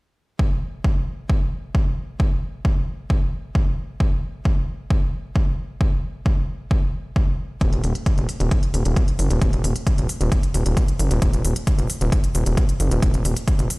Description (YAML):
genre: driving peak-time techno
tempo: 133 BPM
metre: 4/4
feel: straight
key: unclear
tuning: A4 = 442 Hz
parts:
  - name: electronic kick drum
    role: drums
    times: 0.4-13.6 s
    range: none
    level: -20 LUFS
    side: equal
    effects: studio reverb
  - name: gritty driven synth bass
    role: bass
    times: 7.6-13.7 s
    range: Eb1 to Gb1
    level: -20 LUFS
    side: equal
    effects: sidechain pumping
  - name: electronic hi-hat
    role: drums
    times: 7.6-13.8 s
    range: none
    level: -32 LUFS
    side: left 1 dB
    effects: sidechain pumping on hats, low-pass filter on hats, studio reverb
room: digital ambience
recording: played on a big sound system in a bare room, stone room reverb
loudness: -19 LUFS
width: side -25 dB against mid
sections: 0.4-13.8 A section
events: none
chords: none